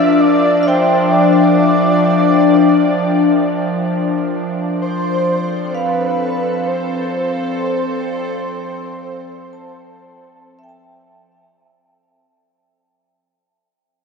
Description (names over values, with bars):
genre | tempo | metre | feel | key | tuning
ambient | free time | none | none | unclear | A4 = 441 Hz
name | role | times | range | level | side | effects
breathy flute-like synth lead | melody | 0.0-11.3 s | B4 to E5 | -19 LUFS | right 1 dB | ensemble chorus, tape echo
evolving wavetable pad | sustained chords | 0.0-12.3 s | F3 to D5 | -15 LUFS | left 2 dB | chorus, built-in reverb
vibraphone with hard mallets | arpeggios | 0.0-12.8 s | D5 to A5 | -22 LUFS | right 2 dB | tape echo
room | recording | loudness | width
wet huge ambient reverb, RT60 7.5 s | none | -13 LUFS | side -5 dB against mid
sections
0.0-12.3 A section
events
fade-out 2.3-12.3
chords
0.0 Bb; 4.8 Dm7